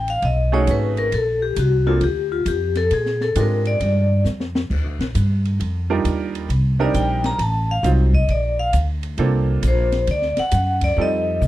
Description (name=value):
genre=jazz, small-group swing and bop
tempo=134 BPM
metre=4/4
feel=swing 66% on 8ths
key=unclear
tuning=A4 = 443 Hz
part: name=vibraphone with medium hard mallets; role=melody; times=0.0-11.4 s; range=F4 to Bb5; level=-21 LUFS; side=left 2 dB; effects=none
part: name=upright bass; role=bass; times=0.0-11.5 s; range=G#1 to C3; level=-20 LUFS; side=equal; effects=none
part: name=open jazz drum kit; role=drums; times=0.1-11.5 s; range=crash cymbal, hi-hat, kick drum, ride cymbal, snare drum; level=-28 LUFS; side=equal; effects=none
part: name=clear baby grand piano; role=accompaniment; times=0.5-11.5 s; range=Gb3 to C5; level=-23 LUFS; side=right 6 dB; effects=none
room=little or no reverb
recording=dry, close 1970s-style studio recording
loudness=-17 LUFS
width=side -14 dB against mid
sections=0.0-11.5 A section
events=vibraphone solo 0.0-11.5; drum fill 4.3-4.7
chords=0.2 B13; 1.1 Bbmaj9; 2.9 Bb13; 4.7 Ebmaj9; 6.5 Cm7; 7.4 F7b9; 8.3 Bbmaj9; 10.1 D